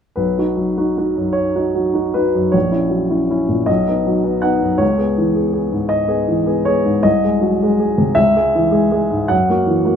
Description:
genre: classical, romantic character piece for solo piano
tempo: 53 BPM (dotted quarters)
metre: 6/8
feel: rubato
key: B major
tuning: A4 = 440 Hz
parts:
  - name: warm baby grand piano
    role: solo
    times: 0.2-10.0 s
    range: A#1 to F#5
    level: -14 LUFS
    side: equal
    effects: none
room: moderate large studio reverb, RT60 1.1 s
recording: none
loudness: -14 LUFS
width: side -8 dB against mid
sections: 0.2-10.0 A section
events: none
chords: 0.2 B; 2.5 F#7/A#; 3.7 B; 4.8 C#m7; 7.1 G#7/B#; 8.2 C#m; 9.3 F#7

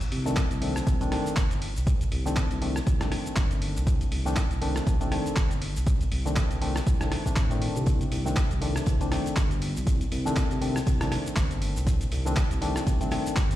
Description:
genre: deep house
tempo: 120 BPM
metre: 4/4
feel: swing 57% on 16ths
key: C dorian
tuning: A4 = 439 Hz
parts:
  - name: dusty soul sampler-style drum kit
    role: drums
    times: 0.0-13.6 s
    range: handclaps, hi-hat, rim click, shaker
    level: -34 LUFS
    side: equal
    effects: none
  - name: smooth synth bass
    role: bass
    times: 0.1-13.6 s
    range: G1 to C2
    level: -29 LUFS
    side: equal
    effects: tube saturation, sidechain pumping
  - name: percussive organ stab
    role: stabs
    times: 0.3-13.4 s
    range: Eb3 to D4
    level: -31 LUFS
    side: left 1 dB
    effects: chorus, sidechain pumping, ping-pong delay
  - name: electronic kick drum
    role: drums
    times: 0.4-13.5 s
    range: none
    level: -25 LUFS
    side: equal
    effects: overdrive
  - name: loose indie drum kit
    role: drums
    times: 7.9-13.5 s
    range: hi-hat, snare drum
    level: -45 LUFS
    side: right 2 dB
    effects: none
room: little or no reverb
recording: played on a big sound system in a bare room, large studio reverb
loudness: -24 LUFS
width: side -14 dB against mid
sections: 0.0-13.6 A section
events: none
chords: 0.0 Cm69

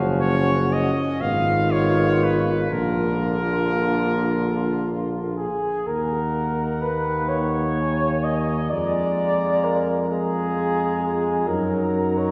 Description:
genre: classical, hymn-like piece for brass band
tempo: 37-44 BPM (dotted quarters)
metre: 6/8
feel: rubato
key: Eb minor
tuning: A4 = 440 Hz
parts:
  - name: mellow flugelhorn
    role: second line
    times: 0.0-12.3 s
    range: F4 to Eb5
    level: -27 LUFS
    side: equal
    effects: none
  - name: brilliant trombone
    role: accompaniment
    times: 0.0-12.3 s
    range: D3 to Ab3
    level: -31 LUFS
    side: equal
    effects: none
  - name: warm trombone section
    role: accompaniment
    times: 0.0-12.3 s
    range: Bb3 to F4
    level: -33 LUFS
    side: equal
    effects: none
  - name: mellow tuba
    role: bass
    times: 0.0-12.3 s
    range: Gb1 to Gb2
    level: -27 LUFS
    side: equal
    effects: none
  - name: clear cornet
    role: melody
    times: 0.2-12.3 s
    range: Bb4 to Bb5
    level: -30 LUFS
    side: equal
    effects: none
room: wet concert hall reverb, RT60 1.9 s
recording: heard from further back in the room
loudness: -22 LUFS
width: mono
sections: 0.0-5.9 A section; 5.9-12.3 B section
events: none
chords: 0.0 Ebm9/Gb; 1.2 Fm7b5/Ab; 2.7 Bb; 5.9 Ebm; 8.7 Bb7/F; 11.5 Ebm/Gb

